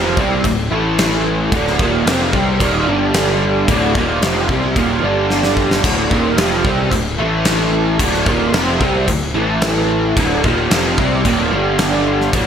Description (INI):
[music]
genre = hard rock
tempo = 111 BPM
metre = 4/4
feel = straight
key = D minor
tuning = A4 = 438 Hz
[part]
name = cranked stack guitar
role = riff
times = 0.0-12.5 s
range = D2 to C4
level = -15 LUFS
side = right 1 dB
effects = overdrive, analog chorus
[part]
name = fuzz picked electric bass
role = bass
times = 0.0-12.5 s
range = D1 to C2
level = -22 LUFS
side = equal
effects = overdrive
[part]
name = gated 80s drum kit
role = drums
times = 0.2-12.5 s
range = crash cymbal, kick drum, snare drum, splash cymbal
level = -19 LUFS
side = equal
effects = gated reverb
[sound]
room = moderate lush hall reverb, RT60 2.0 s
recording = bright 1980s-style digital production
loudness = -13 LUFS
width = side -8 dB against mid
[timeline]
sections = 0.0-12.5 A section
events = drum fill 5.3-5.8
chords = 0.0 Dm; 0.7 A5; 1.5 Dm; 2.9 G5; 3.7 Dm; 5.0 G5; 5.8 Dm; 7.2 A5; 8.0 Dm; 9.4 A5; 10.2 Dm; 11.5 G5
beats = 0.45 0.99 | 1.53 2.07 2.61 3.15 | 3.69 4.23 4.77 5.31 | 5.85 6.39 6.93 7.47 | 8.01 8.55 9.09 9.63 | 10.17 10.71 11.25 11.79 | 12.33